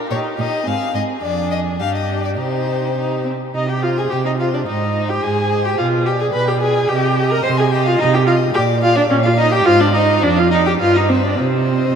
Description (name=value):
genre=quick classical-period movement for string quartet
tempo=107 BPM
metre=2/4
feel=rubato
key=C minor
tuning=A4 = 440 Hz
part: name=warm violin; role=second line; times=0.0-12.0 s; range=G4 to C6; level=-23 LUFS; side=left 3 dB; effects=none
part: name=rich viola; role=accompaniment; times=0.0-12.0 s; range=C4 to C5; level=-18 LUFS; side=right 1 dB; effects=none
part: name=rich violin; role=melody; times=0.1-12.0 s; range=B4 to F5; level=-25 LUFS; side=left 7 dB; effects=none
part: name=warm cello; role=bass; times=0.1-11.9 s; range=F2 to C3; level=-20 LUFS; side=right 4 dB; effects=none
room=wet cathedral reverb, RT60 5.6 s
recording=in a vast, echoing space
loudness=-14 LUFS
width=side -7 dB against mid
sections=0.0-3.5 A section; 3.5-12.0 B section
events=none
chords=0.1 Eb/Bb; 0.7 Ab; 1.2 Ddim/F; 1.8 G5; 2.4 Cm; 3.5 Cmadd11; 4.7 Ab; 5.8 Bdim7; 6.9 Cm; 8.5 Bb; 9.1 Eb5/Bb; 9.7 Ab; 10.2 Ebmaj7sus2/F; 10.8 G; 11.4 Cm